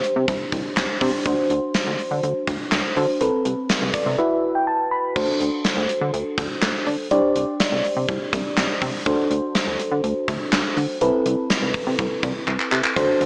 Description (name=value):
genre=synth-pop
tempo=123 BPM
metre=4/4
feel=straight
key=unclear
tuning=A4 = 441 Hz
part: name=mellow FM electric piano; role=accompaniment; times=0.0-13.3 s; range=C4 to B5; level=-22 LUFS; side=equal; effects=chorus
part: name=gated 80s drum kit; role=drums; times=0.0-13.3 s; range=crash cymbal, handclaps, hi-hat, kick drum, snare drum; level=-23 LUFS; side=equal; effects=none
part: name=chorused synth bass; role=bass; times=0.2-13.3 s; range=C2 to D3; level=-24 LUFS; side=equal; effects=none
room=moderate lush hall reverb, RT60 1.7 s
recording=big arena sound, small speaker sound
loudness=-19 LUFS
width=side -36 dB against mid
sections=0.0-5.2 A section; 5.2-13.3 A section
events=FM electric piano fill 3.7-5.2; drum fill 12.5-13.0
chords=0.0 Csus2; 1.3 D7; 3.2 Amadd9/C; 4.2 Esus2; 5.2 D7; 7.1 Csus2; 9.1 D7; 11.0 Amadd9/C